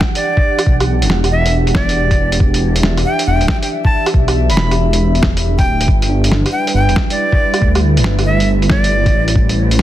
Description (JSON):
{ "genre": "future garage", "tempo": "138 BPM", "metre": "4/4", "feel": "swing 65% on 16ths", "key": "unclear", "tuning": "A4 = 442 Hz", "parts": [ { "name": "breathy bright jazz flute", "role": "melody", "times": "0.0-9.3 s", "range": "D5 to B5", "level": "-19 LUFS", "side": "equal", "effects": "tape echo" }, { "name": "warbly tape-like pad", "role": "sustained chords", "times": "0.0-9.8 s", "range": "E3 to F#5", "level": "-21 LUFS", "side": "right 2 dB", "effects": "chorus, built-in reverb, sidechain pumping" }, { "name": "electronic kick drum", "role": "drums", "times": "0.0-9.5 s", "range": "none", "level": "-14 LUFS", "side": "equal", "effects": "none" }, { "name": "lo-fi sampler-style drum kit", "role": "drums", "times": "0.0-9.8 s", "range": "hi-hat, snare drum, woodblock", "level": "-18 LUFS", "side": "equal", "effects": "none" }, { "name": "swelling detuned saw bass", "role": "bass", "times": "0.7-9.8 s", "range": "D1 to D2", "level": "-15 LUFS", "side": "equal", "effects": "sidechain pumping" }, { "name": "bell-like tine electric piano", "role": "accompaniment", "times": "6.1-9.8 s", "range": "E3 to D4", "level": "-23 LUFS", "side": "left 1 dB", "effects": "sidechain pumping, tape echo" } ], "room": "light reverb, digital ambience", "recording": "dense, heavily limited modern master, vinyl crackle", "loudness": "-11 LUFS", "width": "side -13 dB against mid", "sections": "0.0-9.8 A section", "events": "none", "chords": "0.0 Em9; 5.9 G6", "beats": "0.23 | 0.66 1.10 1.53 1.97 | 2.40 2.84 3.27 3.71 | 4.14 4.58 5.01 5.45 | 5.88 6.31 6.75 7.18 | 7.62 8.05 8.49 8.92 | 9.36 9.79" }